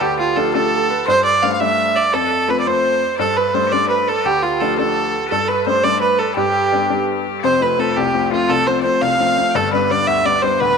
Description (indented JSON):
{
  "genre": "celtic folk, Celtic jig",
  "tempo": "113 BPM (dotted quarters)",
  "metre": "6/8",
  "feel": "straight",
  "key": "G mixolydian",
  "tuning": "A4 = 441 Hz",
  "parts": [
    { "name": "rich fiddle", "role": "melody", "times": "0.0-10.8 s", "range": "F4 to F5", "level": "-16 LUFS", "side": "right 3 dB", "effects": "none" },
    { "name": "Celtic harp", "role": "second line", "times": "0.0-8.7 s", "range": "F4 to F5", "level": "-24 LUFS", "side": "right 12 dB", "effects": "none" },
    { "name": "loud bright bagpipes", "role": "second line", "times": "0.0-10.8 s", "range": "F4 to G5", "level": "-28 LUFS", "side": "left 12 dB", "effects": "none" },
    { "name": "clear baby grand piano", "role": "accompaniment", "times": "0.0-10.8 s", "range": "D1 to D4", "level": "-20 LUFS", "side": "left 13 dB", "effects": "none" }
  ],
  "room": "moderate plate reverb, RT60 2.9 s",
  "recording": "1960s-style stereo with parts hard left and right",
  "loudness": "-14 LUFS",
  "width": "side -5 dB against mid",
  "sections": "0.0-7.4 A section; 7.4-10.8 B section",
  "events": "none",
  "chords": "0.0 Dm; 1.1 Gsus2; 2.1 F; 3.2 Gsus2; 4.3 Dm; 5.3 Gsus2; 6.4 G; 7.4 F; 9.5 G",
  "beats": "| 0.02 0.55 | 1.07 1.60 | 2.13 2.66 | 3.19 3.72 | 4.25 4.78 | 5.31 5.84 | 6.37 6.90 | 7.43 7.96 | 8.49 9.02 | 9.55 10.08 | 10.61"
}